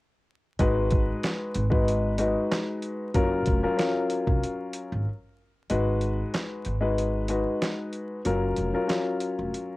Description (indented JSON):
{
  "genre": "hip hop, boom-bap hip-hop",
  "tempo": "94 BPM",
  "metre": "4/4",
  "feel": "swing 54% on 16ths",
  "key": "G# dorian",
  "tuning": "A4 = 439 Hz",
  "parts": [
    { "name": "dark grand piano", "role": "accompaniment", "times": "0.6-9.8 s", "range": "F#3 to B4", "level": "-26 LUFS", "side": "left 2 dB", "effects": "cassette tape, high-pass filter, low-pass filter" },
    { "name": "upright bass", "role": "bass", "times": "0.6-9.5 s", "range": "E#1 to G#1", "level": "-28 LUFS", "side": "equal", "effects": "none" },
    { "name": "dusty soul sampler-style drum kit", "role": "drums", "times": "0.6-9.7 s", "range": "handclaps, hi-hat, kick drum, snare drum", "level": "-27 LUFS", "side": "equal", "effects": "cassette tape" }
  ],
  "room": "light reverb",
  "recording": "home recording on cassette, vinyl crackle",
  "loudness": "-24 LUFS",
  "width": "side -19 dB against mid",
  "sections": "0.6-5.7 A section; 5.7-9.8 B section",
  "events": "break 5.1-5.7; kick muted 5.7-9.8",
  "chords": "0.6 G#m7; 3.1 F#maj7; 5.7 G#m7; 8.3 F#maj7"
}